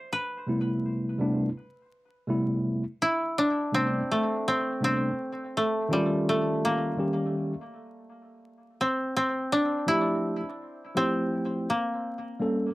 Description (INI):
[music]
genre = hip hop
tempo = 83 BPM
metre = 4/4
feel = swing 63% on 16ths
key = A minor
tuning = A4 = 440 Hz
[part]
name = koto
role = melody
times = 0.0-12.7 s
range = G3 to C5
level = -27 LUFS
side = equal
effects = cassette tape, analog delay
[part]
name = tine electric piano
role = accompaniment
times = 0.5-12.7 s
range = C3 to A4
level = -27 LUFS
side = equal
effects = overdrive, fast stereo tremolo, cassette tape
[sound]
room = light reverb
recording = home recording on cassette, vinyl crackle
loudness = -25 LUFS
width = side -18 dB against mid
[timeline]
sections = 0.0-3.0 A section; 3.0-12.7 A section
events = none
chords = 0.0 Am9; 3.0 Am11; 5.9 D#9; 8.8 Fmaj9; 11.7 A7b9